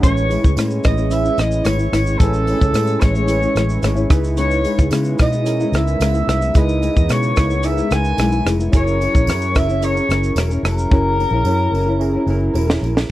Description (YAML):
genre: indie pop, bedroom pop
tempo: 110 BPM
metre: 4/4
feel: straight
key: unclear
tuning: A4 = 439 Hz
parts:
  - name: mellow soprano saxophone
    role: melody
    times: 0.0-12.5 s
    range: A4 to G#5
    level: -22 LUFS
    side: equal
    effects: lush chorus
  - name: nylon-string guitar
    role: accompaniment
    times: 0.0-13.1 s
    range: A2 to A#4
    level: -22 LUFS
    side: left 2 dB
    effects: lush chorus, warbly pitch drift
  - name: warbly lo-fi synth keys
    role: accompaniment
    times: 0.0-13.1 s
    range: C#4 to G#5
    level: -25 LUFS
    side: right 3 dB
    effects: chorus
  - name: vintage muted fingered electric bass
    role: bass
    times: 0.0-13.0 s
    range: E1 to C#3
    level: -19 LUFS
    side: equal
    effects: none
  - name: compact cocktail drum kit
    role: drums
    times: 0.0-13.1 s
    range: hi-hat, kick drum, rim click, shaker, snare drum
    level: -17 LUFS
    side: equal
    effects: none
  - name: tambourine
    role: percussion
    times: 0.3-13.0 s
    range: none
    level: -41 LUFS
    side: right 12 dB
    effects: none
room: little or no reverb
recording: dry, close 1970s-style studio recording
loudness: -14 LUFS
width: side -15 dB against mid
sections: 0.0-13.1 A section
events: drum fill 10.9-13.1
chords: 0.0 Amaj7; 4.1 C#m7; 8.7 F#7